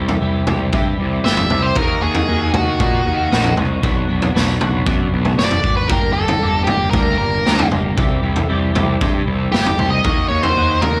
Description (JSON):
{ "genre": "quiet-loud alternative rock", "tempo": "116 BPM", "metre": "4/4", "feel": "straight", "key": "unclear", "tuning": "A4 = 440 Hz", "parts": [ { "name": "twelve-string electric guitar", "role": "arpeggios", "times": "0.0-11.0 s", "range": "G2 to G4", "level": "-26 LUFS", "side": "equal", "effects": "ensemble chorus, tape echo" }, { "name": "fuzz picked electric bass", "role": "bass", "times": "0.0-11.0 s", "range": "F#1 to Bb2", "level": "-23 LUFS", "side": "equal", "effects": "overdrive" }, { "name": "raw garage drum kit", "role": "drums", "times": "0.1-10.9 s", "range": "kick drum, snare drum, toms", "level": "-21 LUFS", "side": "equal", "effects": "none" }, { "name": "octave-fuzz lead guitar", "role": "melody", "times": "1.2-11.0 s", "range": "Gb4 to E5", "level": "-22 LUFS", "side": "equal", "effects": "distortion" } ], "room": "light reverb", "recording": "small room ambience", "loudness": "-17 LUFS", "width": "mono", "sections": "0.0-11.0 A section", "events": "none", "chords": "0.0 C; 1.8 Ebm; 3.8 Bm; 5.9 Gm; 8.0 C; 10.1 Ebm" }